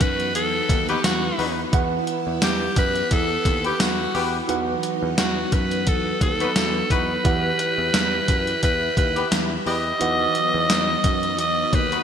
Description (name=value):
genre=1980s-style pop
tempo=87 BPM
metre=4/4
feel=swing 55% on 16ths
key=E harmonic minor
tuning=A4 = 440 Hz
part: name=raspy alto saxophone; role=melody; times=0.0-12.0 s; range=F#4 to D#5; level=-23 LUFS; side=equal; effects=none
part: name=tine electric piano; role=accompaniment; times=0.0-12.0 s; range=E3 to F#5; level=-29 LUFS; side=right 6 dB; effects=none
part: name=string machine, violins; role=sustained chords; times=0.0-12.0 s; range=F#3 to G4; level=-29 LUFS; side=equal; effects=ensemble chorus
part: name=picked electric bass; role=bass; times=0.0-12.0 s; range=D#2 to F#2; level=-29 LUFS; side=equal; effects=none
part: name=gated 80s digital drum machine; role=drums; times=0.0-12.0 s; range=hi-hat, kick drum, snare drum, tambourine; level=-23 LUFS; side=equal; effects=gated reverb, gated reverb snare
part: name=warm horn section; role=stabs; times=0.9-12.0 s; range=B3 to B4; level=-30 LUFS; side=left 5 dB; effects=ping-pong delay
room=moderate plate reverb, RT60 3.2 s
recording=bright 1980s-style digital production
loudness=-19 LUFS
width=side -8 dB against mid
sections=0.0-12.0 A section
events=none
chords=0.0 B/E; 1.7 Esus2; 4.5 B/E; 7.2 Emadd9; 10.0 B/E